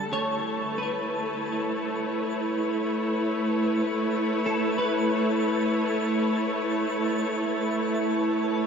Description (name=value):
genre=ambient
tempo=free time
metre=none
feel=none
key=A major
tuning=A4 = 439 Hz
part: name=muted studio string section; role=sustained chords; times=0.0-8.7 s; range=A3 to A5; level=-25 LUFS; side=equal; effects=none
part: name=twinkling granular texture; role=texture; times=0.0-8.7 s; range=A5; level=-41 LUFS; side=right 2 dB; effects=built-in reverb
part: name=clean electric guitar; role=arpeggios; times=0.1-6.3 s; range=A4 to C#5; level=-34 LUFS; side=equal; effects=ensemble chorus, ping-pong delay
part: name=overtone-sweeping drone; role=drone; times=0.9-8.7 s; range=A3 to E4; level=-32 LUFS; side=right 2 dB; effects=chorus, built-in reverb
room=wet huge ambient reverb, RT60 7.8 s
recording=none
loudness=-24 LUFS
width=side -6 dB against mid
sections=0.1-8.7 A section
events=fade-in on synth texture 0.1-8.7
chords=0.1 Aadd9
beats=free time